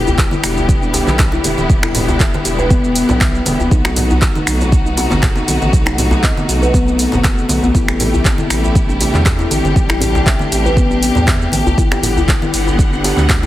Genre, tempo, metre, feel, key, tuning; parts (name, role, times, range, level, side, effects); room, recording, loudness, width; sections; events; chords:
afro house; 119 BPM; 4/4; swing 53% on 16ths; E minor; A4 = 440 Hz
clear symphonic string section; sustained chords; 0.0-13.5 s; C3 to F#5; -20 LUFS; left 1 dB; sidechain pumping
round analog bass; bass; 0.0-13.5 s; D1 to E2; -19 LUFS; equal; sidechain pumping
kalimba; arpeggios; 0.1-13.5 s; B3 to E5; -19 LUFS; left 2 dB; sidechain pumping, digital delay
deep house drum kit; drums; 0.1-13.5 s; finger snaps, handclaps, hi-hat, shaker; -20 LUFS; right 1 dB
djembe; percussion; 0.1-13.5 s; -24 LUFS; left 1 dB
electronic kick drum; drums; 0.2-13.4 s; -14 LUFS; equal
congas; percussion; 0.3-13.4 s; -22 LUFS; right 1 dB
light reverb, small room ambience; heavily compressed radio sound; -12 LUFS; side -14 dB against mid
0.0-13.5 A section
0.0 Em7; 3.7 B7b9; 7.7 Am7; 11.8 Gmaj7